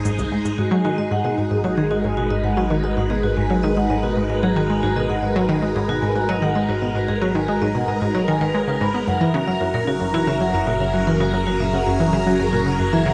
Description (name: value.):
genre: ambient, sequencer-driven space music.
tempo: 113 BPM.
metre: 4/4.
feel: straight.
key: G# minor.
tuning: A4 = 440 Hz.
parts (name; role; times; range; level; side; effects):
phased string machine; sustained chords; 0.0-13.1 s; F#3 to C5; -26 LUFS; equal; ensemble chorus, phaser.
analog drone; bass; 0.0-13.1 s; F#1 to Ab1; -31 LUFS; equal; chorus.
analog pluck; riff; 0.1-13.1 s; C2 to B3; -24 LUFS; equal; chorus, tape echo.
cabasa and congas; percussion; 0.1-0.6 s; none; -41 LUFS; equal; overdrive, tape echo.
vibraphone with medium hard mallets; arpeggios; 0.6-13.1 s; F#4 to B5; -26 LUFS; equal; tape echo.
bubbling stepped-filter texture; texture; 1.4-13.1 s; A#5; -34 LUFS; equal; chorus, built-in reverb.
room: moderate plate reverb, RT60 2.7 s.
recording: nothing above 10.9 kHz.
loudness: -20 LUFS.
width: mono.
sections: 0.6-13.1 A section.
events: none.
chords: 0.0 Ab; 0.6 G#m7; 9.1 F#7.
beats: 0.05 | 0.58 1.11 1.64 2.17 | 2.71 3.24 3.77 4.30 | 4.83 5.36 5.89 6.42 | 6.95 7.49 8.02 8.55 | 9.08 9.61 10.14 10.67 | 11.20 11.73 12.26 12.79.